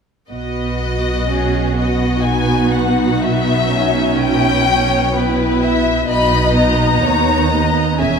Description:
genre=classical, slow romantic movement for string orchestra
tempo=62 BPM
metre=3/4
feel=rubato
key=B major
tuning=A4 = 438 Hz
part: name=rich studio violin section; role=melody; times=0.3-8.2 s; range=D#5 to B5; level=-19 LUFS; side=left 6 dB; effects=none
part: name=rich studio viola section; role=accompaniment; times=0.3-8.2 s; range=B3 to G#4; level=-18 LUFS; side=right 2 dB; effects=none
part: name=dark studio cello section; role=bass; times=0.3-8.2 s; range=D#2 to B2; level=-21 LUFS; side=right 3 dB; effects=none
part: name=rich studio double bass section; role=bass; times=0.3-8.2 s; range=E1 to D#2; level=-22 LUFS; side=right 2 dB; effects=none
part: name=rich studio violin section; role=second line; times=1.3-8.2 s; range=E4 to E5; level=-21 LUFS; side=left 3 dB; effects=none
room=wet concert hall reverb, RT60 2.5 s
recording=none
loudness=-13 LUFS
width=side -6 dB against mid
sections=0.3-8.2 A section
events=none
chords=0.3 B; 3.2 Em/B; 6.1 B

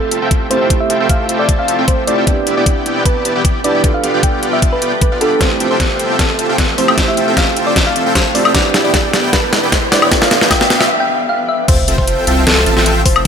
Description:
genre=future bass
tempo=153 BPM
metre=4/4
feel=half-time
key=F lydian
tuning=A4 = 440 Hz
part: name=thumb-piano-like synth pluck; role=melody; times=0.0-13.3 s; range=A4 to G5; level=-18 LUFS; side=equal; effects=chorus, sidechain pumping, dub echo
part: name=felt-muted upright piano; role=accompaniment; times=0.0-11.7 s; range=A3 to A4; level=-21 LUFS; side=right 5 dB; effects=vintage 12-bit sampler grit, sidechain pumping, dub echo
part: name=shimmering ambient pad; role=sustained chords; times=0.0-13.3 s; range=E3 to G4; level=-24 LUFS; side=left 1 dB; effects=chorus, built-in reverb, sidechain pumping
part: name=dense compressed supersaw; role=riff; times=0.0-13.2 s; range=B3 to B5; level=-18 LUFS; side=right 1 dB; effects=sidechain pumping, low-pass filter
part: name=pop drum kit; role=drums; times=0.1-13.2 s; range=crash cymbal, hi-hat, snare drum, woodblock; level=-15 LUFS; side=left 1 dB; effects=overdrive
part: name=electronic kick drum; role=drums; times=0.3-13.1 s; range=none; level=-15 LUFS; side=left 1 dB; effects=overdrive
part: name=riser and sub drop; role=sound effects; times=7.5-13.3 s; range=none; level=-23 LUFS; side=equal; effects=none
part: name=saturated sub bass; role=bass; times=11.7-13.3 s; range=F1 to C2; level=-17 LUFS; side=equal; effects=sidechain pumping
room=moderate lush hall reverb, RT60 1.9 s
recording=none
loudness=-11 LUFS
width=side -7 dB against mid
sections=0.0-11.7 A section; 11.7-13.3 B section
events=build-up 0.0-11.7; filter sweep on synth pluck 0.0-11.7; drum fill 5.4-10.9; break 10.9-11.7; drop 11.7-13.3; impact 11.7-13.3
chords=0.0 Fmaj9; 2.3 Em7; 3.8 G7; 5.4 Fmaj9; 8.5 Em7; 10.1 G7; 11.7 Fmaj9

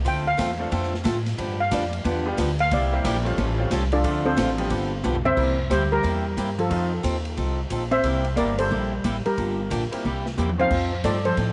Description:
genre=country, western swing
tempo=180 BPM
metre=4/4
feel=swing 63% on 8ths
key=C mixolydian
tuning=A4 = 442 Hz
part: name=picked swing-style acoustic guitar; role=accompaniment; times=0.0-11.5 s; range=C3 to A4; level=-32 LUFS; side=equal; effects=none
part: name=upright bass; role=bass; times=0.0-11.5 s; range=G1 to A2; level=-28 LUFS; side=equal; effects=none
part: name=steel pan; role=melody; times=0.1-11.5 s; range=C4 to G5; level=-28 LUFS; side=equal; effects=tape echo
part: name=swinging big-band drum kit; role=drums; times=0.1-11.5 s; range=crash cymbal, hi-hat, kick drum, ride cymbal, snare drum, toms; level=-35 LUFS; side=equal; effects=none
part: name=bright upright piano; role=accompaniment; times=0.6-10.7 s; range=E3 to A4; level=-35 LUFS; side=equal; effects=none
part: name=hollow-body jazz guitar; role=second line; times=5.3-11.5 s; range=F3 to C4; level=-30 LUFS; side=equal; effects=none
room=light reverb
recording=nothing above 10.8 kHz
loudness=-24 LUFS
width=mono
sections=0.0-5.4 A section; 5.4-11.5 B section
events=steel pan solo 0.0-5.4; drum fill 5.0-5.4, 10.4-10.7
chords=0.1 Dm7; 1.4 G7; 2.7 C7; 3.4 A7alt; 4.0 Dm7; 4.7 G7; 5.4 C7; 6.7 F7; 8.0 C7; 9.4 Gm7; 10.0 C7; 10.7 F7

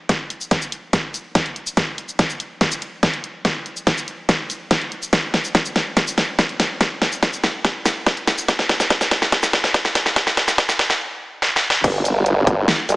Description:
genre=heavy wobble dubstep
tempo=143 BPM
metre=4/4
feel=half-time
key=unclear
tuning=A4 = 441 Hz
part: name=big-room dance drum kit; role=drums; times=0.1-13.0 s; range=crash cymbal, hi-hat, shaker, snare drum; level=-18 LUFS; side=equal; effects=none
part: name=electronic kick drum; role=drums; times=0.1-12.6 s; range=none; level=-20 LUFS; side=equal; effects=none
part: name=formant-sweep wobble bass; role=bass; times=11.8-13.0 s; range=G1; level=-17 LUFS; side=equal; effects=chorus, overdrive
room=light reverb, digital ambience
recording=high-pass filter, small speaker sound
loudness=-17 LUFS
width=side -22 dB against mid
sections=0.0-11.8 A section; 11.8-13.0 B section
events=build-up 0.0-11.8; drum fill 0.0-11.0, 11.4-11.8; stop 11.0-11.8; drop 11.8-13.0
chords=none

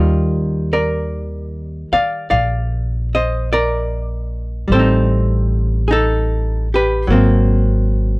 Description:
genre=jazz ballad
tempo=50 BPM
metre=4/4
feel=swing 68% on 8ths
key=Eb major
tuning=A4 = 440 Hz
part: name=archtop guitar, miked and amplified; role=accompaniment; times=0.0-8.2 s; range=Eb3 to F5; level=-17 LUFS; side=equal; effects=none
part: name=upright bass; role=bass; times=0.0-8.2 s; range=Ab1 to Eb2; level=-17 LUFS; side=equal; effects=none
room=little or no reverb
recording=dry, close 1970s-style studio recording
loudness=-14 LUFS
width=side -26 dB against mid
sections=0.0-8.2 A section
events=none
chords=0.0 Ebmaj9; 4.7 Am7b5; 7.1 Ab9

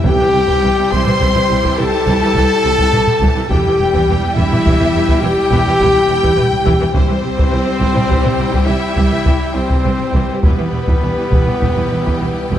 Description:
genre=cinematic, epic orchestral film score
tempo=69 BPM (dotted quarters)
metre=12/8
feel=straight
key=C major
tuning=A4 = 440 Hz
part: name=warm symphonic violin section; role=melody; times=0.0-12.6 s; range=B4 to C6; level=-25 LUFS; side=left 4 dB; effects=none
part: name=warm symphonic violin section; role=second line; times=0.0-12.6 s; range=B4 to C6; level=-24 LUFS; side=left 1 dB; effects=none
part: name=rich symphonic viola section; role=accompaniment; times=0.0-12.6 s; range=C3 to G3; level=-23 LUFS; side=right 1 dB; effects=none
part: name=dark French horn section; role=sustained chords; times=0.0-12.6 s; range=B3 to C5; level=-19 LUFS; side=left 4 dB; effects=none
part: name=warm symphonic string section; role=sustained chords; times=0.0-12.6 s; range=G3 to G5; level=-24 LUFS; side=equal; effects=none
part: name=mellow trumpet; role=stabs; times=0.0-12.6 s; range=B3 to C5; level=-21 LUFS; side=right 1 dB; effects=none
part: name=dark symphonic double bass section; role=bass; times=0.0-12.6 s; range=E1 to C2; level=-21 LUFS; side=right 2 dB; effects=none
part: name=taiko ensemble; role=drums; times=0.0-12.6 s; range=none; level=-18 LUFS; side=equal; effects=none
part: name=timpani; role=percussion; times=0.0-0.9 s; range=C3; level=-25 LUFS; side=equal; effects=none
part: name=dark symphonic cello section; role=bass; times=0.1-12.6 s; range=C2 to E2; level=-21 LUFS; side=right 2 dB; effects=none
room=moderate scoring stage reverb, RT60 1.7 s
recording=dark, warm production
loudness=-12 LUFS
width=side -10 dB against mid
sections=0.0-12.6 A section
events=none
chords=0.1 C; 3.5 Em; 7.0 C; 10.4 Em

